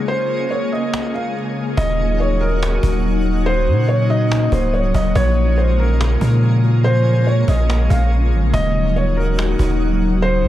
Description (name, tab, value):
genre	hip hop, atmospheric cloud-rap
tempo	142 BPM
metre	4/4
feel	half-time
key	unclear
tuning	A4 = 442 Hz
part	felt-muted upright piano	melody	0.0-10.5 s	Bb4 to F5	-22 LUFS	equal	tape echo
part	glassy FM pad	sustained chords	0.0-10.5 s	Db3 to Ab4	-21 LUFS	left 1 dB	ensemble chorus, built-in reverb
part	twinkling granular texture	texture	0.0-10.2 s	Bb3 to Eb5	-30 LUFS	right 1 dB	built-in reverb
part	cajon	drums	0.9-10.3 s	none	-26 LUFS	equal	none
part	long sustained 808-style bass	bass	1.8-10.5 s	Db1 to Bb2	-16 LUFS	equal	none
room	small room ambience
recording	none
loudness	-15 LUFS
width	side -13 dB against mid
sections	0.0-1.8 A section; 1.8-10.5 B section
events	break 0.9-1.8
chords	0.0 Bbm7; 1.8 Ebm7; 5.2 Bbm7; 8.5 Ebm7